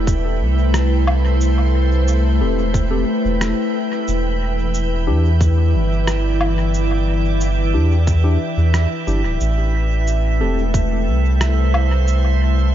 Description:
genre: ambient dub.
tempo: 90 BPM.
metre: 4/4.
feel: straight.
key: A minor.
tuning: A4 = 440 Hz.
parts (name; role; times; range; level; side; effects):
soft additive organ-like pad; sustained chords; 0.0-12.7 s; E3 to G5; -22 LUFS; left 1 dB; ensemble chorus, built-in reverb.
soft dub sub bass; bass; 0.0-12.7 s; D1 to E2; -16 LUFS; equal; none.
drifting glass-harmonics texture; texture; 0.0-12.7 s; E5; -29 LUFS; right 10 dB; chorus, built-in reverb.
electronic cabasa, rim click and woodblock; drums; 0.1-12.2 s; none; -28 LUFS; equal; overdrive, dub echo.
electronic kick drum; drums; 0.1-10.9 s; none; -19 LUFS; equal; none.
tine electric piano; stabs; 2.4-10.6 s; C4 to A4; -29 LUFS; left 3 dB; medium stereo tremolo, dub echo.
room: light reverb.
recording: nothing above 7.5 kHz.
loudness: -15 LUFS.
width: side -11 dB against mid.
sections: 0.0-12.7 A section.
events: none.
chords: 0.0 Am7; 4.1 Em7; 9.4 Am7.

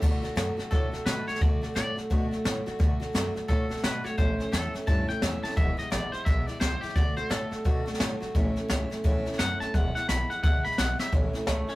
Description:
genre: rockabilly.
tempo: 173 BPM.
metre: 4/4.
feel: swing 62% on 8ths.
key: A major.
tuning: A4 = 439 Hz.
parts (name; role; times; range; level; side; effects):
twangy electric guitar; melody; 0.0-11.8 s; A3 to B5; -33 LUFS; left 1 dB; none.
picked steel-string acoustic guitar; accompaniment; 0.0-11.8 s; E2 to F#4; -33 LUFS; equal; none.
upright bass; bass; 0.0-11.7 s; E1 to B2; -32 LUFS; equal; none.
jazz brush drum kit; drums; 0.0-11.7 s; crash cymbal, hi-hat, kick drum, snare drum; -27 LUFS; equal; none.
room: light reverb.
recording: rough rehearsal-room recording.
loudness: -25 LUFS.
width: side -18 dB against mid.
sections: 0.0-11.1 A section.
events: clean electric guitar solo 0.0-11.1; drum fill 11.0.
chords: 0.0 D; 4.2 A; 5.6 E; 7.0 D; 8.3 A; 9.7 E; 11.1 A.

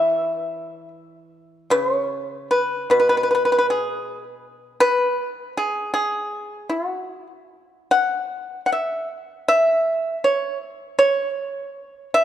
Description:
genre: chinese traditional, Chinese solo plucked strings.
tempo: 74-81 BPM.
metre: 2/4.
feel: rubato.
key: E gong mode.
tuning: A4 = 440 Hz.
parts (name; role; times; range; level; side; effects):
pipa; solo; 0.0-12.2 s; B2 to F#5; -19 LUFS; equal; none.
room: light reverb.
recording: dark, warm production.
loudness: -19 LUFS.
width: side -11 dB against mid.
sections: 0.0-1.3 A section; 1.3-12.2 B section.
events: none.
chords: none.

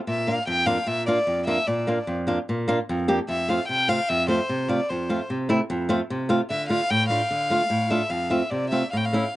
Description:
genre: klezmer.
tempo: 149 BPM.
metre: 4/4.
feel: straight.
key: F major.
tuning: A4 = 440 Hz.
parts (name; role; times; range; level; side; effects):
rich violin; melody; 0.1-9.4 s; C5 to G5; -24 LUFS; left 1 dB; slapback echo.
flamenco guitar; accompaniment; 0.1-9.2 s; F2 to G4; -24 LUFS; equal; none.
room: little or no reverb.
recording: recorded outdoors, with no room sound, nothing above 10.8 kHz.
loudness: -21 LUFS.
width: side -16 dB against mid.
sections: 0.0-9.4 A section.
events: none.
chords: 0.1 Bb; 3.3 F; 6.5 Dm; 8.1 F.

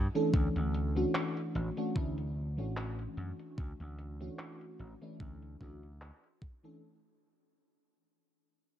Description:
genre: vaporwave.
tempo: 74 BPM.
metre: 4/4.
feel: swing 55% on 16ths.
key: D major.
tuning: A4 = 435 Hz.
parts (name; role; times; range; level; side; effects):
vintage slap bass; bass; 0.0-6.1 s; A1 to F#2; -37 LUFS; equal; none.
FM electric piano with soft pad layer; accompaniment; 0.1-6.8 s; E3 to A4; -36 LUFS; equal; phaser, analog chorus, vintage 12-bit sampler grit, tape echo.
gated 80s digital drum machine; drums; 0.2-6.8 s; handclaps, hi-hat; -40 LUFS; equal; gated reverb, overdrive, low-pass filter on hats, low-pass filter on snare, low-pass filter on room.
electronic kick drum; drums; 0.3-6.6 s; none; -33 LUFS; equal; overdrive.
room: little or no reverb.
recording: dark, warm production, cassette tape.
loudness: -32 LUFS.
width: side -10 dB against mid.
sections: 0.0-6.8 A section.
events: fade-out 0.0-6.8; filter sweep on drum 0.0-6.8.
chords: 0.3 Dmaj7.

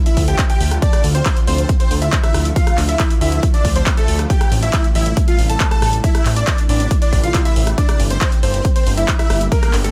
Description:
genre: uplifting trance.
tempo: 138 BPM.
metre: 4/4.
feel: straight.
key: D minor.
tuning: A4 = 440 Hz.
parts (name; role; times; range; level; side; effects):
supersaw chords; melody; 0.1-9.9 s; A3 to A5; -26 LUFS; equal; ensemble chorus, sidechain pumping, delay.
bright grand piano; second line; 0.1-9.9 s; A4 to A5; -29 LUFS; equal; sidechain pumping, digital delay.
punchy analog drum machine; drums; 0.1-9.9 s; handclaps, hi-hat, rim click; -26 LUFS; equal; none.
fat analog bass; bass; 0.2-9.9 s; G1 to D2; -20 LUFS; equal; sidechain pumping.
electronic kick drum; drums; 0.2-9.6 s; none; -18 LUFS; equal; overdrive.
room: little or no reverb.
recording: none.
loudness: -16 LUFS.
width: mono.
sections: 0.0-9.9 A section.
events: none.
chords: 0.0 Dm; 4.3 Am7; 7.8 Gm.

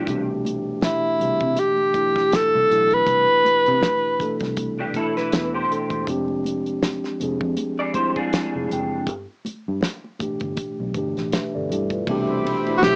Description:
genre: R&B, neo-soul.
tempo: 80 BPM.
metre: 4/4.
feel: swing 56% on 16ths.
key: C major.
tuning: A4 = 440 Hz.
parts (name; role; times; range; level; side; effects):
electric guitar through a small old amp; second line; 0.0-0.3, 4.8-9.0 s; D4 to D5; -28 LUFS; equal; ensemble chorus, cassette tape.
mellow tine electric piano; accompaniment; 0.0-13.0 s; A2 to G5; -28 LUFS; equal; cassette tape.
vintage muted fingered electric bass; bass; 0.1-13.0 s; E1 to C3; -32 LUFS; equal; none.
damped 70s drum kit; drums; 0.1-13.0 s; hi-hat, kick drum, ride cymbal, snare drum; -28 LUFS; equal; cassette tape.
congas; percussion; 0.1-13.0 s; none; -38 LUFS; equal; none.
breathy tenor saxophone; melody; 0.8-4.4, 12.8-13.0 s; E4 to B4; -20 LUFS; equal; none.
warm analog pad; sustained chords; 12.1-13.0 s; C5 to D6; -29 LUFS; equal; chorus, cassette tape.
room: moderate small room reverb, RT60 0.6 s.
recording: home recording on cassette, small speaker sound.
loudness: -22 LUFS.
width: mono.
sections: 0.0-12.1 A section.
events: none.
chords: 0.1 Cmaj7; 6.1 Fm6; 9.1 Gadd9; 12.1 Cmaj9.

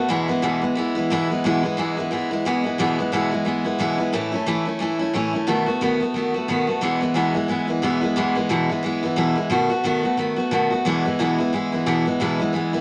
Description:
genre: rock.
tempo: 179 BPM.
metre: 4/4.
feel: swing 58% on 8ths.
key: E major.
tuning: A4 = 440 Hz.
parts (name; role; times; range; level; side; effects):
picked steel-string acoustic guitar; solo; 0.0-12.8 s; E2 to F#4; -22 LUFS; equal; none.
room: moderate studio reverb, RT60 0.8 s.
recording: none.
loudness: -22 LUFS.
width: mono.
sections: 0.0-1.4 A section; 1.4-12.2 A section.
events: none.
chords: 0.1 E; 4.1 A; 5.5 B7; 6.8 E; 9.5 B7; 10.9 E.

